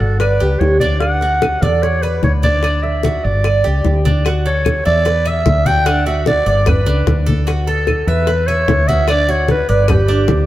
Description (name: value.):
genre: latin, Cuban son and guajira.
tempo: 149 BPM.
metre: 4/4.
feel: straight.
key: D major.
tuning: A4 = 441 Hz.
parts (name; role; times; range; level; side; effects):
growling clarinet; melody; 0.0-10.5 s; G4 to G5; -17 LUFS; equal; none.
Cuban tres; arpeggios; 0.0-10.5 s; D4 to E5; -21 LUFS; right 3 dB; none.
woody fretless electric bass; bass; 0.0-10.5 s; G1 to E2; -16 LUFS; equal; none.
congas; percussion; 0.0-10.5 s; none; -20 LUFS; left 1 dB; none.
bongos; percussion; 0.2-10.5 s; none; -24 LUFS; left 3 dB; none.
claves; percussion; 0.2-10.1 s; none; -32 LUFS; left 4 dB; none.
room: moderate plate reverb, RT60 3.5 s.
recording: heard from further back in the room.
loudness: -12 LUFS.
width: side -14 dB against mid.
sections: 0.0-4.3 A section; 4.3-10.5 B section.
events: none.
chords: 0.2 G; 1.0 D; 1.8 E5; 2.6 D; 3.4 G5; 4.3 D; 5.1 E5; 5.9 D; 6.7 G; 7.5 D; 8.3 E5; 9.1 D; 9.9 G.